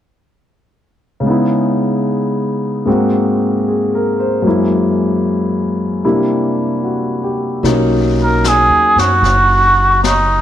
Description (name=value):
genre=jazz ballad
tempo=75 BPM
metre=4/4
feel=swing 67% on 8ths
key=B major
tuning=A4 = 440 Hz
part: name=warm concert grand piano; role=accompaniment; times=1.2-10.4 s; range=F#2 to B#4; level=-14 LUFS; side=left 1 dB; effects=none
part: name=upright bass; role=bass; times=7.6-10.4 s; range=F#1 to F#2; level=-16 LUFS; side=right 1 dB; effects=none
part: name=jazz brush drum kit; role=drums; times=7.6-10.4 s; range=brushed snare drum, hi-hat, snare drum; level=-23 LUFS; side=left 7 dB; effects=none
part: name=trumpet with cup mute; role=melody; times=8.2-10.4 s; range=D#4 to A#4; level=-10 LUFS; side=right 1 dB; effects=none
room=light reverb, small room reverb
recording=1960s-style stereo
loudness=-12 LUFS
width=side -10 dB against mid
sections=1.3-7.6 A section; 7.6-10.4 B section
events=none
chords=1.3 C#m9; 2.9 G#9; 4.5 F#9; 6.0 C9; 7.6 Bmaj9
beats=| 1.26 2.07 2.87 3.67 | 4.46 5.25 6.04 6.83 | 7.63 8.43 9.23 10.03